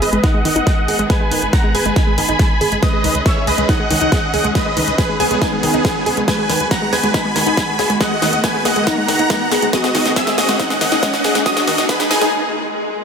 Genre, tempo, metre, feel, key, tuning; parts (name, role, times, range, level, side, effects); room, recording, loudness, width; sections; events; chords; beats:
uplifting trance; 139 BPM; 4/4; straight; G# minor; A4 = 444 Hz
big supersaw lead; melody; 0.0-12.3 s; B3 to B5; -18 LUFS; equal; sidechain pumping, low-pass filter, tape echo
wide unison pluck; second line; 0.0-12.3 s; G#5 to B6; -27 LUFS; right 1 dB
bright studio string section; sustained chords; 0.0-13.0 s; D#3 to G#4; -26 LUFS; equal; sidechain pumping
wide unison pluck; arpeggios; 0.0-12.3 s; D#3 to G#4; -21 LUFS; equal; sidechain pumping, tape echo
tight sequencer bass; bass; 0.0-12.3 s; G#1 to D#2; -26 LUFS; equal; sidechain pumping
big-room dance drum kit; drums; 0.0-12.3 s; hi-hat, snare drum; -22 LUFS; equal; high-pass filter on snare, high-pass filter on hats
riser and swell; sound effects; 2.5-13.0 s; -25 LUFS; equal
electronic kick drum; drums; 0.2-12.0 s; -18 LUFS; equal; overdrive
moderate concert hall reverb, RT60 2.1 s; high-pass filter; -13 LUFS; side -6 dB against mid
0.0-13.0 A section
build-up 0.0-13.0; drum fill 0.0-12.3; filter sweep on synth arpeggio sound 0.0-13.0; filter sweep 0.0-13.0; riser 2.5-12.3; break 12.3-13.0; swell 12.3-13.0
0.0 G#m; 2.8 C#sus2; 6.3 B6/D#; 9.7 D#sus4
0.24 0.67 | 1.10 1.53 1.96 2.40 | 2.83 3.26 3.69 4.12 | 4.55 4.99 5.42 5.85 | 6.28 6.71 7.14 7.57 | 8.01 8.44 8.87 9.30 | 9.73 10.16 10.60 11.03 | 11.46 11.89 12.32 12.75